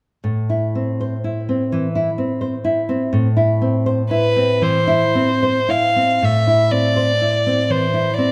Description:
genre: romantic duo for violin and classical guitar.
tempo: 36-44 BPM (dotted quarters).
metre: 6/8.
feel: rubato.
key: A minor.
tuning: A4 = 440 Hz.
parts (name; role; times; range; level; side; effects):
nylon-string guitar; accompaniment; 0.2-8.3 s; A2 to C5; -20 LUFS; equal; none.
clear violin; melody; 4.1-8.3 s; B4 to F5; -20 LUFS; equal; none.
room: light reverb.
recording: none.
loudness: -18 LUFS.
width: mono.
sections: 0.2-6.2 A section; 6.2-8.3 B section.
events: none.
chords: 0.2 Am.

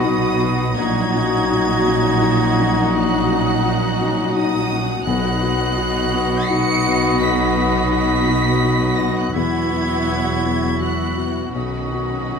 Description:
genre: cinematic.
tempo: 84 BPM.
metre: 3/4.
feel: rubato.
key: B major.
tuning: A4 = 442 Hz.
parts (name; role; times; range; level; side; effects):
warm symphonic violin section; melody; 0.0-12.4 s; B5 to C#7; -27 LUFS; right 1 dB; none.
clear clarinet; second line; 0.0-12.4 s; F#4; -29 LUFS; left 4 dB; none.
clear oboe; second line; 0.0-12.4 s; D#5 to E5; -28 LUFS; right 3 dB; none.
mellow hollow concert flute; second line; 0.0-12.4 s; A#5 to C#6; -29 LUFS; equal; none.
warm symphonic violin section; second line; 0.0-12.4 s; F#4 to F#5; -26 LUFS; equal; none.
felt-muted upright piano; accompaniment; 0.0-12.4 s; A#1 to F#4; -24 LUFS; left 6 dB; none.
warm symphonic viola section; accompaniment; 0.0-12.4 s; F#3 to E4; -26 LUFS; right 2 dB; none.
mellow French horn section; sustained chords; 0.0-12.4 s; D#3 to E4; -23 LUFS; left 4 dB; none.
warm symphonic cello section; bass; 0.0-12.4 s; E2 to B2; -26 LUFS; right 2 dB; none.
warm symphonic double bass section; bass; 0.0-12.4 s; E1 to B1; -25 LUFS; right 4 dB; none.
timpani; percussion; 5.1-6.1 s; B2; -30 LUFS; left 2 dB; none.
room: moderate scoring stage reverb, RT60 1.7 s.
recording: close, detailed microphones.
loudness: -16 LUFS.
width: side -6 dB against mid.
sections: 0.0-12.4 A section.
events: none.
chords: 0.0 B; 0.8 D#m7/A#; 5.1 B; 9.3 Eadd9; 11.5 Badd9.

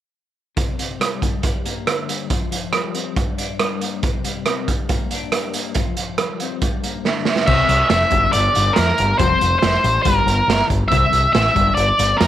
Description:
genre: indie rock.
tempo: 139 BPM.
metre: 4/4.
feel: straight.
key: G dorian.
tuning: A4 = 440 Hz.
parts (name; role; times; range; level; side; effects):
twelve-string electric guitar; riff; 0.6-12.3 s; G2 to D4; -28 LUFS; left 14 dB; harmonic tremolo.
raw garage drum kit; drums; 0.6-12.3 s; crash cymbal, hi-hat, kick drum, rim click, snare drum; -20 LUFS; right 3 dB; none.
octave-fuzz lead guitar; melody; 7.5-12.3 s; Bb4 to E5; -16 LUFS; equal; distortion, slapback echo.
growling picked electric bass; bass; 7.5-12.3 s; F1 to F2; -20 LUFS; left 1 dB; overdrive.
room: studio reverb.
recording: 1960s-style stereo.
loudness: -16 LUFS.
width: side -12 dB against mid.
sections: 0.6-7.5 A section; 7.5-12.3 B section.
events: drum fill 7.0-7.5.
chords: 0.6 C5; 1.2 Gm; 2.3 Fsus2; 3.2 Gm; 4.0 C5; 4.7 Gm; 5.8 Fsus2; 6.6 Gm; 7.5 C; 8.1 Gm; 9.2 Fsus2; 10.1 Gm; 10.9 C; 11.6 G5.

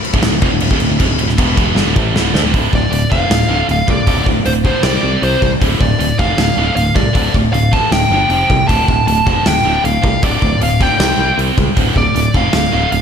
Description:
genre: hard rock.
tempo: 156 BPM.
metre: 4/4.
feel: straight.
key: D minor.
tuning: A4 = 440 Hz.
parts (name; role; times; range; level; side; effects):
gated 80s drum kit; drums; 0.0-13.0 s; crash cymbal, hi-hat, kick drum, snare drum; -16 LUFS; equal; none.
scooped high-gain guitar; riff; 0.1-13.0 s; D2 to C4; -17 LUFS; right 1 dB; distortion, slapback echo.
picked electric bass; bass; 0.1-13.0 s; D1 to D2; -18 LUFS; equal; none.
dark smooth lead guitar; melody; 2.8-13.0 s; C5 to A5; -17 LUFS; equal; overdrive, slapback echo.
room: moderate concert hall reverb, RT60 2.3 s.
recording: big arena sound.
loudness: -11 LUFS.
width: side -7 dB against mid.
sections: 0.0-2.5 A section; 2.5-13.0 B section.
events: drum fill 1.8-2.5.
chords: 0.0 Dm; 4.8 C5; 5.6 Dm; 8.3 F5; 8.7 Dm; 11.0 C5; 11.8 Dm.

